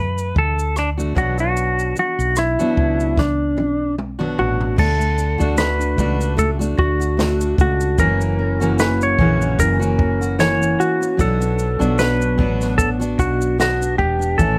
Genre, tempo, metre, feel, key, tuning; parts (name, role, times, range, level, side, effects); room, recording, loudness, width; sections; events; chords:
acoustic pop; 75 BPM; 4/4; swing 55% on 16ths; A4 = 439 Hz
clean lap steel guitar; melody; 0.0-14.6 s; D4 to C#5; -22 LUFS; equal; plate reverb
fingerpicked steel-string acoustic guitar; accompaniment; 0.0-14.6 s; F#2 to F#4; -25 LUFS; equal
woody fretless electric bass; bass; 0.0-14.6 s; E1 to F#2; -24 LUFS; equal
compact cocktail drum kit; drums; 0.2-14.6 s; crash cymbal, kick drum, rim click, shaker, snare drum, toms; -25 LUFS; equal
nylon-string guitar; arpeggios; 4.8-14.6 s; E3 to F#4; -30 LUFS; equal
light reverb; -18 LUFS; mono
0.0-4.8 A section; 4.8-14.6 B section
drum fill 3.2-4.8
0.0 D; 1.2 Bm; 4.8 D; 8.0 F#7; 11.2 Bm